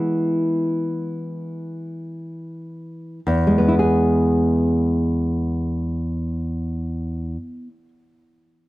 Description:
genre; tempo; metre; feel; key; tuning
classical, baroque-style dance for nylon-string guitar; free time; none; none; E major; A4 = 439 Hz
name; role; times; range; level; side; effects
nylon-string guitar; solo; 0.0-7.9 s; E2 to G#4; -20 LUFS; equal; none
room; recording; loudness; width
studio ambience; dry, close 1970s-style studio recording; -19 LUFS; side -18 dB against mid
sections
0.0-3.3 A section; 3.3-7.7 B section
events
slowing down 0.0-3.3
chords
0.0 E

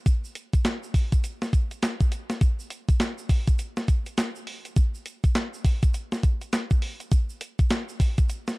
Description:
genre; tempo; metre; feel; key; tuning
R&B; 102 BPM; 4/4; swing 62% on 16ths; none; none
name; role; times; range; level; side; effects
crisp 8-bit digital drum machine; drums; 0.1-8.6 s; handclaps, hi-hat, kick drum, snare drum; -22 LUFS; equal; overdrive
tube shaker; percussion; 0.1-8.6 s; none; -46 LUFS; right 6 dB; none
room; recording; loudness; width
little or no reverb; dark, warm production; -23 LUFS; side -24 dB against mid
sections
0.0-2.4 A section; 2.4-8.6 B section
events
none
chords
none

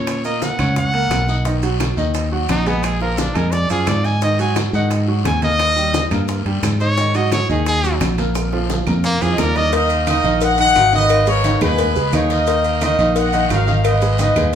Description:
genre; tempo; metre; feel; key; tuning
latin, salsa; 174 BPM; 4/4; straight; Eb minor; A4 = 439 Hz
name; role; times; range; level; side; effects
bright trumpet; melody; 0.0-9.7 s; Bb3 to Ab5; -20 LUFS; equal; none
clear baby grand piano; accompaniment; 0.0-14.6 s; D#3 to Eb6; -22 LUFS; right 1 dB; none
fingered electric bass; bass; 0.0-14.6 s; Ab1 to Bb2; -19 LUFS; equal; none
bongos and cowbell; percussion; 0.1-14.5 s; none; -26 LUFS; left 6 dB; none
claves; percussion; 0.1-14.5 s; none; -34 LUFS; right 6 dB; none
congas; percussion; 0.1-14.5 s; none; -30 LUFS; left 1 dB; none
guiro; percussion; 0.1-14.5 s; none; -32 LUFS; left 6 dB; none
maracas; percussion; 0.1-14.5 s; none; -36 LUFS; right 7 dB; none
timbales and agogo bells; percussion; 0.1-14.5 s; none; -29 LUFS; right 5 dB; none
bright trumpet section; melody; 9.3-14.5 s; Ab4 to Gb5; -17 LUFS; left 1 dB; none
room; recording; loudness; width
wet large studio reverb, RT60 0.9 s; band playing live in one room; -15 LUFS; side -9 dB against mid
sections
0.0-9.7 A section; 9.7-14.6 B section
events
trumpet solo 0.0-9.7; drum fill 8.4-9.7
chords
0.1 Gb; 1.5 Bmaj7; 2.8 Bb5; 4.2 Ab5; 5.6 Eb; 7.0 Ab5; 8.4 Bb; 9.7 Ebm; 11.1 Abm; 12.5 Ebm; 13.8 Abm

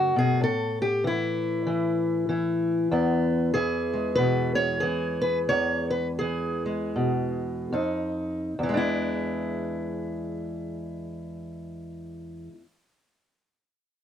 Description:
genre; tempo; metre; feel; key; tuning
acoustic country blues, solo or duo; 68-96 BPM; 4/4; swing 60% on 8ths; E mixolydian; A4 = 445 Hz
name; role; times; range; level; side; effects
fingerpicked steel-string acoustic guitar; solo; 0.0-12.6 s; E2 to C#5; -24 LUFS; equal; none
room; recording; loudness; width
light reverb; close, detailed microphones; -24 LUFS; side -9 dB against mid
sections
0.0-8.6 A section; 8.6-12.1 B section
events
slowing down 2.9-8.6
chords
0.4 A5; 2.9 E; 7.7 D#sus2/E#; 8.6 E7

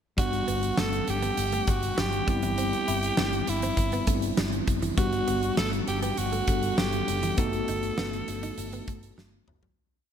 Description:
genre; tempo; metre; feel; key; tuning
1980s-style pop; 100 BPM; 4/4; straight; G major; A4 = 440 Hz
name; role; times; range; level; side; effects
raspy alto saxophone; melody; 0.2-9.2 s; E4 to A4; -30 LUFS; equal; ping-pong delay
bell-like tine electric piano; accompaniment; 0.2-9.8 s; G3 to F#5; -31 LUFS; left 1 dB; medium stereo tremolo
direct-recorded clean electric guitar; riff; 0.2-9.7 s; E3 to E4; -37 LUFS; right 4 dB; analog chorus
fretless electric bass; bass; 0.2-9.7 s; F#1 to G1; -33 LUFS; equal; ensemble chorus
huge arena drum kit; drums; 0.2-9.8 s; hi-hat, kick drum, snare drum, toms; -30 LUFS; equal; none
room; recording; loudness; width
moderate plate reverb, RT60 2.0 s; bright 1980s-style digital production; -24 LUFS; side -8 dB against mid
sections
0.2-9.8 verse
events
fade-out 7.4-9.8; drum fill 9.2-9.8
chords
0.2 Gmaj7; 2.3 Cmaj7/G; 5.0 Gmaj7; 7.4 B7/G

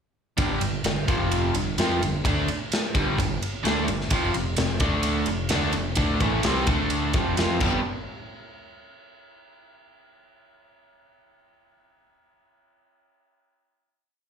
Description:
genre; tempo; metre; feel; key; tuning
blues rock power trio and southern rock; 129 BPM; 4/4; straight; unclear; A4 = 440 Hz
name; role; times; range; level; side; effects
overdriven electric guitar; riff; 0.4-7.8 s; F2 to F4; -25 LUFS; equal; slapback echo
growling fingered electric bass; bass; 0.4-7.8 s; F1 to F2; -28 LUFS; equal; overdrive
big rock drum kit; drums; 0.4-7.7 s; crash cymbal, kick drum, ride cymbal, snare drum; -27 LUFS; equal; none
room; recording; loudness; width
little or no reverb; live gig heard through the venue's PA, club reverb; -22 LUFS; side -7 dB against mid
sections
0.4-7.8 riff; 7.8-9.7 final hit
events
drum fill 7.6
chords
0.4 G5; 1.1 F5; 1.5 G5; 4.1 F5; 4.8 D5; 5.3 F5; 6.7 D5; 7.1 F5; 7.6 G; 7.8 N.C.

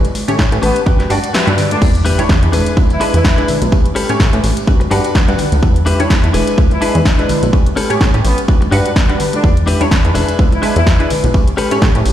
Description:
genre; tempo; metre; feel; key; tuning
filtered disco house; 126 BPM; 4/4; swing 56% on 16ths; E dorian; A4 = 442 Hz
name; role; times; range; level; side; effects
funky polysynth comp; accompaniment; 0.0-12.1 s; G3 to F#5; -19 LUFS; right 1 dB; chorus, phaser, sidechain pumping, low-pass filter
direct-recorded clean electric guitar; riff; 0.0-11.9 s; C#4 to A5; -21 LUFS; left 4 dB; spring reverb, sidechain pumping, low-pass filter
punchy analog drum machine; drums; 0.0-12.1 s; crash cymbal, hi-hat, snare drum; -21 LUFS; equal; sidechain pumping on hats, sidechain pumping on cymbals
tambourine and congas; percussion; 0.0-12.1 s; none; -25 LUFS; left 1 dB; sidechain pumping on perc, low-pass filter on perc
plucky analog bass; bass; 0.3-12.1 s; E1 to A2; -15 LUFS; equal; sidechain pumping, low-pass filter
electronic kick drum; drums; 0.4-11.9 s; none; -12 LUFS; equal; none
mellow horn section; melody; 0.6-3.5, 6.7-11.1 s; D3 to E4; -23 LUFS; equal; sidechain pumping, low-pass filter, dub echo
impact; sound effects; 1.8-3.7 s; none; -23 LUFS; equal; none
room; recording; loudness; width
light reverb, digital ambience; played on a big sound system in a bare room, stone room reverb; -11 LUFS; side -11 dB against mid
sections
0.0-1.8 A section; 1.8-12.1 B section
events
clean electric guitar fill 0.4-1.8; kick drops out 1.3-1.8; band accent 1.3; drop 1.8-12.1; impact 1.8-3.7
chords
0.0 A9; 0.9 Gmaj7; 1.8 Em7; 2.5 E7; 3.7 A9; 4.7 Gmaj7; 5.6 Em7; 6.3 E7; 7.5 A9; 8.5 Gmaj7; 9.4 Em7; 10.2 E7; 11.3 A9

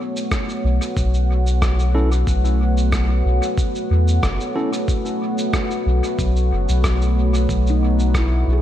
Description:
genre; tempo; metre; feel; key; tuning
ambient dub; 92 BPM; 4/4; straight; unclear; A4 = 440 Hz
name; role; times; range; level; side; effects
deep dark ambient pad; sustained chords; 0.0-8.6 s; A3 to F#5; -23 LUFS; equal; chorus, built-in reverb
electronic shaker and rim click; drums; 0.2-8.3 s; none; -29 LUFS; equal; dub echo
electronic kick drum; drums; 0.3-8.3 s; none; -23 LUFS; equal; none
soft dub sub bass; bass; 0.6-8.6 s; F#1 to E2; -17 LUFS; equal; none
tine electric piano; stabs; 1.9-4.7 s; C#4 to A4; -28 LUFS; right 1 dB; dub echo
handpan; arpeggios; 7.7-8.6 s; D#4 to G#4; -26 LUFS; left 2 dB; vintage 12-bit sampler grit
room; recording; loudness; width
light reverb, digital ambience; vinyl crackle; -16 LUFS; side -12 dB against mid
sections
0.0-8.6 A section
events
none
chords
0.0 B7sus2

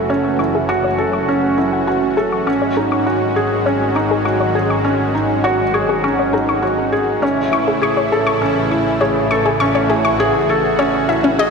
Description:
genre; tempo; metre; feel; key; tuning
piano and strings electronica; 101 BPM; 4/4; straight; unclear; A4 = 440 Hz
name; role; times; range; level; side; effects
lush unison pad; sustained chords; 0.0-11.5 s; C#3 to F#4; -20 LUFS; equal; chorus
felt-muted upright piano; riff; 0.0-11.5 s; C#4 to A4; -17 LUFS; right 1 dB; digital delay
clear studio double bass section; bass; 0.0-11.5 s; F#1 to A1; -26 LUFS; equal; none
soft round pluck; arpeggios; 0.1-11.4 s; C#4 to C#6; -21 LUFS; left 3 dB; chorus, digital delay
room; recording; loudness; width
wet lush hall reverb, RT60 2.6 s; none; -14 LUFS; side -5 dB against mid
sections
0.0-11.5 A section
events
build-up 0.0-11.5; filter sweep on synth arpeggio sound 0.0-11.5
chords
0.0 F#m7; 2.5 G#7sus4; 7.2 Amaj7

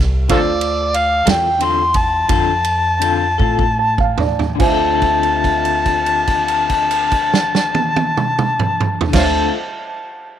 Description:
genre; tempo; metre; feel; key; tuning
slow blues; 48-64 BPM (dotted quarters); 12/8; straight; D minor; A4 = 439 Hz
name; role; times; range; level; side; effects
dark grand piano; accompaniment; 0.0-9.5 s; F4 to E6; -25 LUFS; right 11 dB; none
upright bass; bass; 0.0-9.5 s; C2 to A2; -22 LUFS; equal; none
overdriven harmonica; melody; 0.3-9.5 s; F4 to C6; -17 LUFS; left 2 dB; none
electric guitar through a small old amp; accompaniment; 0.3-9.6 s; D3 to A4; -23 LUFS; left 16 dB; tremolo
natural country drum kit; drums; 0.3-9.3 s; crash cymbal, kick drum, ride cymbal, snare drum, toms; -19 LUFS; right 3 dB; none
room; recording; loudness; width
moderate spring reverb, RT60 2.7 s; 1960s-style stereo with parts hard left and right; -13 LUFS; side -10 dB against mid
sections
0.0-4.6 A section; 4.6-9.6 B section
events
slowing down 0.0-4.6; harmonica solo 0.0-4.6; drum fill 3.4-4.6; grand piano fill 3.4-4.6; held note 4.6-9.1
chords
0.3 Dm7

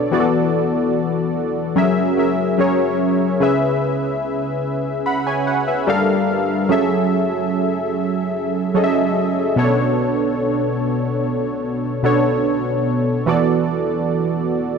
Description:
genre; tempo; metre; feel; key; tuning
R&B; 73 BPM; 4/4; straight; B dorian; A4 = 440 Hz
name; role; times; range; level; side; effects
warm analog keys; solo; 0.0-14.8 s; B2 to B5; -16 LUFS; equal; chorus
room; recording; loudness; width
moderate lush hall reverb, RT60 2.6 s; none; -16 LUFS; side -6 dB against mid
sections
0.0-3.4 A section; 3.4-14.8 B section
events
none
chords
0.1 E7sus4; 1.8 F#9; 3.4 C#m7; 5.9 Gm7; 6.7 F#m7; 9.6 Bm7; 13.3 E7sus4

